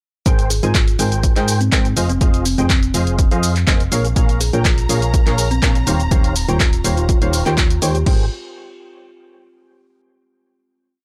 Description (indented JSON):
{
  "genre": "piano house",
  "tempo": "123 BPM",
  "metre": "4/4",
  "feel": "straight",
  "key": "Ab major",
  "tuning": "A4 = 440 Hz",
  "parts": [
    { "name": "percussive organ stab", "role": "riff", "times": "0.3-8.2 s", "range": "Eb3 to Ab5", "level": "-26 LUFS", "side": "equal", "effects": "ensemble chorus, vintage 12-bit sampler grit, sidechain pumping" },
    { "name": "solid FM bass", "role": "bass", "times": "0.3-8.3 s", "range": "Eb1 to Ab2", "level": "-21 LUFS", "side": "equal", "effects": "sidechain pumping" },
    { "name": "electronic kick drum", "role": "drums", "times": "0.3-8.2 s", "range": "none", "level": "-18 LUFS", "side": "equal", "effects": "none" },
    { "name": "punchy analog drum machine", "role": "drums", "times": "0.3-8.2 s", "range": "crash cymbal, handclaps, hi-hat, shaker", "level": "-24 LUFS", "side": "equal", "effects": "none" },
    { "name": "kalimba", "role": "melody", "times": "0.5-8.0 s", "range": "C4 to Ab4", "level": "-29 LUFS", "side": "equal", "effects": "tape echo" },
    { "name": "muted symphonic violin section", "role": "sustained chords", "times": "4.2-8.1 s", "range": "Bb5", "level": "-33 LUFS", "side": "equal", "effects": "sidechain pumping" }
  ],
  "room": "digital ambience",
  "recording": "dry, gritty hardware recording",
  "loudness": "-16 LUFS",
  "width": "mono",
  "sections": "0.3-8.1 drop; 8.1-10.0 final chord",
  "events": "drop 0.3-8.1",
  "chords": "0.3 Abmaj9; 2.0 Fm7; 3.9 Bbm7; 5.9 Eb13; 8.1 Abmaj9"
}